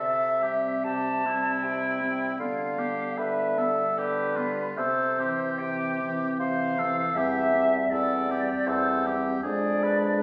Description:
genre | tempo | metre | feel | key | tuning
classical, slow romantic movement for wind quintet | 77 BPM | 3/4 | uneven beats, rubato | C major | A4 = 440 Hz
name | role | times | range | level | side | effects
silver concert flute | melody | 0.0-10.2 s | B4 to A5 | -31 LUFS | equal | none
warm oboe | second line | 0.0-10.2 s | E4 to C5 | -32 LUFS | equal | none
warm bassoon | bass | 0.0-10.2 s | E2 to D3 | -33 LUFS | equal | none
mellow French horn | accompaniment | 0.4-10.2 s | E3 to Ab3 | -39 LUFS | equal | none
warm clarinet | accompaniment | 0.4-10.2 s | B3 to D4 | -35 LUFS | equal | none
room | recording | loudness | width
wet recital hall reverb, RT60 1.4 s | recorded in a church or concert hall, small room ambience | -26 LUFS | mono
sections
0.0-10.2 A section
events
none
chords
0.0 C; 2.4 G7/D; 4.8 C; 7.2 C/E; 9.4 Ddim/F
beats
0.84 1.64 | 2.40 3.18 3.96 | 4.76 5.60 6.39 | 7.15 7.92 8.67 | 9.45

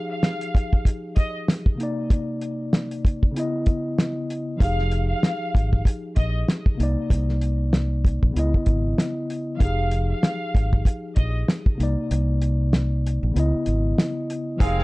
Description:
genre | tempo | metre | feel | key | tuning
hip hop, boom-bap hip-hop | 96 BPM | 4/4 | swing 59% on 16ths | F minor | A4 = 441 Hz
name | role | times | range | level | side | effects
rich studio violin section | melody | 0.0-14.8 s | Eb5 to F5 | -30 LUFS | equal | high-pass filter, low-pass filter
mellow tine electric piano | accompaniment | 0.0-14.8 s | C3 to Eb5 | -28 LUFS | left 1 dB | medium stereo tremolo, cassette tape, high-pass filter, low-pass filter
cloth-damped thuddy drum kit | drums | 0.2-14.8 s | hi-hat, kick drum, snare drum | -20 LUFS | equal | vintage 12-bit sampler grit
fingered electric bass | bass | 4.6-14.8 s | F1 to Db2 | -22 LUFS | equal | none
rich studio string section | sustained chords | 14.6-14.8 s | F3 to G5 | -33 LUFS | left 2 dB | high-pass filter, low-pass filter
bright saxophone section | stabs | 14.6-14.8 s | Eb3 to Ab4 | -31 LUFS | right 1 dB | high-pass filter, low-pass filter
room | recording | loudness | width
light reverb | dark, warm production | -20 LUFS | side -22 dB against mid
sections
0.0-14.6 A section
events
break 0.0-4.6; kick muted 12.1-14.6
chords
0.0 Fm9; 1.8 Cm9; 3.4 Dbm9; 4.6 Fm9; 6.8 Cm9; 8.4 Dbm9; 9.6 Fm9; 11.8 Cm9; 13.4 Dbm9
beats
0.23 0.85 1.48 | 2.10 2.73 3.35 3.98 | 4.61 5.23 5.86 6.48 | 7.11 7.73 8.36 8.98 | 9.61 10.23 10.86 11.48 | 12.11 12.73 13.36 13.98 | 14.61

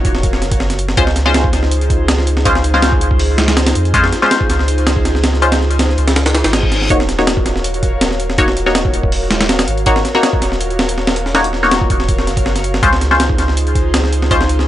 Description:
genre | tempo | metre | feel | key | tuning
drum and bass, jungle | 162 BPM | 4/4 | straight | Eb dorian | A4 = 440 Hz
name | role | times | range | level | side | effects
airy breathy pad | sustained chords | 0.0-14.7 s | Eb4 to F5 | -21 LUFS | equal | chorus, vintage 12-bit sampler grit
filtered dub chord stab | stabs | 0.0-14.4 s | Ab3 to Db5 | -17 LUFS | left 2 dB | phaser, cassette tape, dub echo
soft dub sub bass | bass | 0.0-14.7 s | Eb1 to F2 | -17 LUFS | equal | none
breakbeat sampler-style drum kit | drums | 0.0-14.7 s | hi-hat, kick drum, snare drum | -16 LUFS | equal | none
reverse cymbal | sound effects | 6.3-6.9 s | none | -22 LUFS | left 2 dB | none
room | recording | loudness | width
little or no reverb | dry, gritty hardware recording, nothing above 10.6 kHz | -11 LUFS | side -13 dB against mid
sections
0.0-14.7 A section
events
reverse cymbal 6.3-6.9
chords
0.0 Ebm7; 1.0 Dbmaj7; 6.9 Ebm7; 12.8 Dbmaj7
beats
0.23 0.60 | 0.98 1.35 1.72 2.09 | 2.46 2.83 3.20 3.57 | 3.94 4.31 4.68 5.05 | 5.42 5.79 6.16 6.53 | 6.90 7.27 7.64 8.01 | 8.38 8.75 9.12 9.49 | 9.87 10.23 10.61 10.98 | 11.35 11.72 12.09 12.46 | 12.83 13.20 13.57 13.94 | 14.31

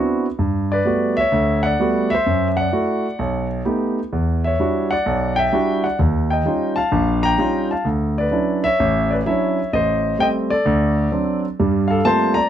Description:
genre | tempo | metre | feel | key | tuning
solo jazz | 129 BPM | 4/4 | swing 66% on 8ths | unclear | A4 = 441 Hz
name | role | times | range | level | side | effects
warm concert grand piano | solo | 0.0-12.5 s | A1 to Bb5 | -16 LUFS | equal | none
room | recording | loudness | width
light reverb | dark, warm production | -17 LUFS | side -10 dB against mid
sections
0.0-11.6 A section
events
none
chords
0.4 Gmaj9; 2.3 F#m7b5; 3.2 B7b13; 4.1 Em9; 6.0 Eb9; 7.9 Dmaj9; 9.7 Am7b5; 10.7 D7; 11.6 Gm11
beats
| 0.40 0.86 1.33 1.79 | 2.26 2.73 3.19 3.66 | 4.13 4.59 5.06 5.53 | 5.99 6.46 6.92 7.39 | 7.86 8.32 8.79 9.26 | 9.72 10.19 10.65 11.12 | 11.59 12.05

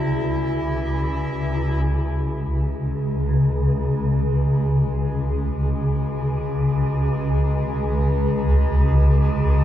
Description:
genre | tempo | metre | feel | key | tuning
ambient | free time | none | none | C# minor | A4 = 440 Hz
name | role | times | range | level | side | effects
gamelan-type bronze metallophone | arpeggios | 0.0-6.8 s | G3 to E4 | -34 LUFS | left 2 dB | diffuse ambient delay
swarming drone | drone | 0.0-9.6 s | C#2 to C#3 | -19 LUFS | equal | built-in reverb
metallic inharmonic drone | texture | 0.0-9.6 s | G#3 to E4 | -32 LUFS | equal | chorus, built-in reverb
room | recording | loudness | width
wet cathedral reverb, RT60 6.0 s | dark, warm production | -19 LUFS | side -12 dB against mid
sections
0.0-1.9 A section; 1.9-9.6 B section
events
fade-in on synth drone 1.9-9.6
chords
0.0 Em; 1.9 C#m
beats
free time

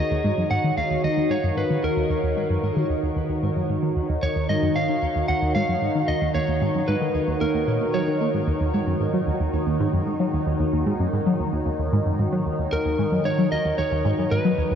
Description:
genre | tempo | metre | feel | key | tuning
ambient, sequencer-driven space music | 113 BPM | 4/4 | straight | Eb minor | A4 = 435 Hz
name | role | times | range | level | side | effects
lightly driven lead guitar | melody | 0.0-8.3, 12.7-14.8 s | Bb4 to Gb5 | -26 LUFS | equal | tape echo
phased analog pad | sustained chords | 0.0-14.8 s | Eb3 to Db5 | -25 LUFS | equal | phaser, chorus
tight sequenced synth | riff | 0.0-14.8 s | Eb2 to Bb3 | -24 LUFS | equal | chorus, tape echo
room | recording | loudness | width
wet huge ambient reverb, RT60 8.5 s | none | -20 LUFS | side -8 dB against mid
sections
0.0-14.8 A section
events
none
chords
0.0 Ebm7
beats
0.51 1.04 1.57 | 2.10 2.63 3.17 3.70 | 4.23 4.76 5.29 5.82 | 6.35 6.88 7.41 7.94 | 8.47 9.01 9.54 10.07 | 10.60 11.13 11.66 12.19 | 12.72 13.25 13.78 14.31

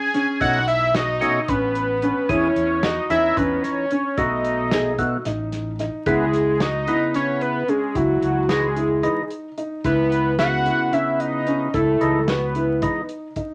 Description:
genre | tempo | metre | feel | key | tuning
progressive instrumental, band music in an uneven meter | 222 BPM (eighths) | 7/8 | straight | C# minor | A4 = 440 Hz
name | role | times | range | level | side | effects
fat analog lead | melody | 0.0-13.1 s | F#4 to G#5 | -25 LUFS | equal | chorus
felt-muted upright piano | arpeggios | 0.0-13.5 s | C#4 to G#4 | -26 LUFS | equal | none
warm soul drum kit | drums | 0.1-13.5 s | hi-hat, kick drum, snare drum | -30 LUFS | equal | none
percussive tonewheel organ | accompaniment | 0.4-13.0 s | B2 to G#4 | -27 LUFS | equal | overdrive, slow rotary speaker
fretless electric bass | bass | 0.4-12.8 s | A1 to E2 | -30 LUFS | equal | none
room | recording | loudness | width
moderate studio ambience, RT60 0.5 s | vinyl crackle | -21 LUFS | mono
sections
0.0-6.1 A section; 6.1-13.5 B section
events
none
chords
0.4 B9; 2.3 E6; 4.2 B7; 6.1 C#m7; 8.0 Emaj7/C#; 9.8 C#m7; 11.7 Emaj7/C#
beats
0.14 | 0.41 0.68 0.95 1.22 1.49 1.75 2.02 | 2.29 2.56 2.83 3.10 3.37 3.64 3.91 | 4.18 4.45 4.72 4.99 5.25 5.53 5.79 | 6.07 6.33 6.61 6.88 7.15 7.42 7.69 | 7.96 8.23 8.50 8.77 9.04 9.31 9.58 | 9.85 10.12 10.39 10.66 10.93 11.20 11.47 | 11.74 12.01 12.28 12.55 12.82 13.09 13.37

